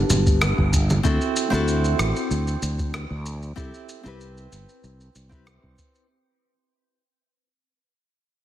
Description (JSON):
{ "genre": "sunset chillout", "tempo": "95 BPM", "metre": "4/4", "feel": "straight", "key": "A dorian", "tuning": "A4 = 438 Hz", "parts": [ { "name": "nylon-string guitar", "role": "accompaniment", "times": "0.0-6.1 s", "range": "B3 to F#5", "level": "-27 LUFS", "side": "right 1 dB", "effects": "auto-pan, tape echo" }, { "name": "sustaining fretless electric bass", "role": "bass", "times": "0.0-5.7 s", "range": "G1 to D2", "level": "-24 LUFS", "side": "equal", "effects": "none" }, { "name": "electronic shaker and rim click", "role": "drums", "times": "0.1-6.1 s", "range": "none", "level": "-28 LUFS", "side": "equal", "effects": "none" }, { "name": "congas", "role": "percussion", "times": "0.1-1.0 s", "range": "none", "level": "-28 LUFS", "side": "right 2 dB", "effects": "none" }, { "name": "electronic kick drum", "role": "drums", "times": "0.3-5.9 s", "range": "none", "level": "-22 LUFS", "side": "equal", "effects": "none" } ], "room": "light reverb, studio reverb", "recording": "heavily compressed radio sound, multiband compression", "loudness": "-20 LUFS", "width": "side -12 dB against mid", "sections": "0.0-6.1 A section", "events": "fade-out 0.0-6.1", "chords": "0.0 Gmaj7; 1.0 D7; 3.6 Am9" }